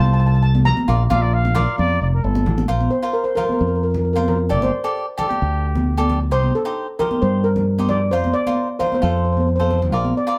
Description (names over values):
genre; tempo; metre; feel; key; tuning
calypso; 133 BPM; 4/4; straight; Bb major; A4 = 438 Hz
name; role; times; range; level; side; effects
steel pan; melody; 0.0-10.4 s; A4 to Bb5; -24 LUFS; equal; none
cavaquinho; accompaniment; 0.0-10.4 s; Eb4 to D5; -27 LUFS; equal; none
fingered electric bass; bass; 0.0-10.1 s; F1 to G2; -20 LUFS; equal; none
congas; percussion; 0.5-10.2 s; none; -27 LUFS; equal; none
dark trumpet; second line; 1.1-6.2 s; G4 to F5; -27 LUFS; equal; none
room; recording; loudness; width
moderate studio reverb, RT60 0.5 s; band playing live in one room; -19 LUFS; mono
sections
0.0-2.7 A section; 2.7-10.4 B section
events
steel pan solo 2.7-10.4; drum fill 9.6-9.9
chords
0.0 F; 0.9 Bbmaj7; 2.7 Bbsus2; 4.5 Gsus2; 6.3 Cm; 8.1 Fsus4; 9.0 F